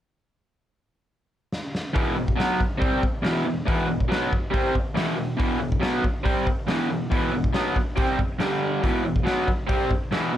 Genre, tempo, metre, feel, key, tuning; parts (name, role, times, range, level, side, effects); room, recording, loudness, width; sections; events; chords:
garage rock duo or trio; 140 BPM; 4/4; straight; E minor; A4 = 438 Hz
raw garage drum kit; drums; 1.5-10.2 s; hi-hat, kick drum, snare drum; -25 LUFS; equal
raw garage guitar; riff; 1.9-10.4 s; E2 to C4; -24 LUFS; equal; overdrive
light reverb; -22 LUFS; side -11 dB against mid
0.2-1.9 A section; 1.9-10.4 B section
drum fill 1.5-1.9
0.2 N.C.; 1.9 Em; 8.4 G5; 8.8 Em